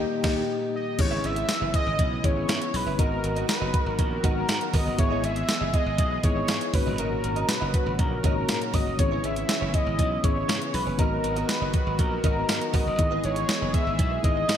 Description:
1980s-style pop; 120 BPM; 4/4; straight; A4 = 440 Hz
mellow tine electric piano; accompaniment; 0.0-14.6 s; A#3 to A#5; -31 LUFS; left 4 dB; medium stereo tremolo
brassy analog pad; sustained chords; 0.0-14.6 s; A#2 to G#4; -35 LUFS; right 2 dB; chorus
direct-recorded clean electric guitar; riff; 0.0-14.6 s; B3 to E5; -37 LUFS; right 6 dB; ensemble chorus
glassy slap bass; bass; 0.0-14.6 s; F#1 to G#2; -30 LUFS; equal
clean 12-bit digital drum machine; drums; 0.2-14.6 s; crash cymbal, hi-hat, kick drum, snare drum, tambourine; -25 LUFS; equal; gated reverb
octave-doubled lead; melody; 0.8-14.6 s; A#4 to E5; -29 LUFS; equal; chorus, ping-pong delay
moderate lush hall reverb, RT60 1.6 s, digital ambience; bright 1980s-style digital production; -22 LUFS; side -9 dB against mid
1.0-14.6 A section
tine electric piano fill 0.0-1.0; band accent 0.0-1.0
0.0 D#; 1.0 C#m7; 3.0 Bmaj7; 5.0 Emaj7; 6.7 D#m7; 9.0 C#m7; 11.0 Bmaj7; 13.0 Emaj7

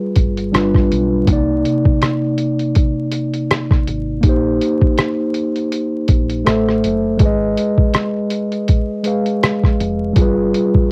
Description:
lo-fi hip hop; 81 BPM; 4/4; swing 57% on 16ths; A4 = 439 Hz
mellow tine electric piano; accompaniment; 0.0-10.9 s; C3 to F5; -19 LUFS; equal; cassette tape, low-pass filter
deep dub fingered electric bass; bass; 0.2-10.5 s; F1 to C2; -25 LUFS; equal; transformer saturation
lo-fi sampler-style drum kit; drums; 0.2-10.9 s; hi-hat, kick drum, rim click; -17 LUFS; equal; vintage 12-bit sampler grit
little or no reverb; home recording on cassette, vinyl crackle; -16 LUFS; mono
0.0-1.3 A section; 1.3-10.9 B section
0.0 G7b9; 0.5 G7; 1.3 Cm9; 4.2 Eb6/Bb; 6.5 Am; 7.2 Abm; 10.2 G7b9

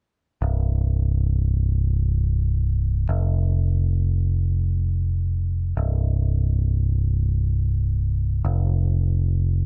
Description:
rock; free time; A4 = 442 Hz
growling picked electric bass; bass; 0.4-9.7 s; C1 to F1; -22 LUFS; equal; overdrive
little or no reverb; -22 LUFS; mono
0.4-9.7 A section

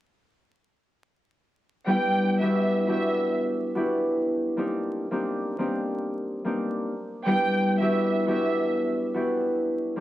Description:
hip hop; 89 BPM; 4/4; swing 56% on 16ths; E minor; A4 = 439 Hz
clear symphonic violin section; melody; 1.9-8.8 s; E5 to G5; -28 LUFS; right 3 dB; high-pass filter, low-pass filter, analog delay
concert harp; accompaniment; 1.9-10.0 s; G3 to G4; -24 LUFS; equal; high-pass filter, low-pass filter
light reverb, studio reverb; dark, warm production, vinyl crackle; -23 LUFS; side -14 dB against mid
1.9-10.0 A section
1.9 Em9; 4.6 Cm9; 7.3 Em9

